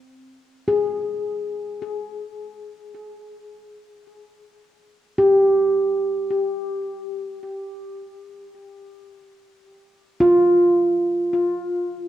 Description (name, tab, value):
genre	ambient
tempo	free time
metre	none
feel	none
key	unclear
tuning	A4 = 440 Hz
part	handpan	solo	0.7-12.1 s	F4 to Ab4	-19 LUFS	equal	ping-pong delay
room	wet scoring stage reverb, RT60 2.1 s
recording	worn, warbling old tape, cassette tape, warbly pitch drift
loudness	-18 LUFS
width	side -12 dB against mid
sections	0.1-12.1 A section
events	none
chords	none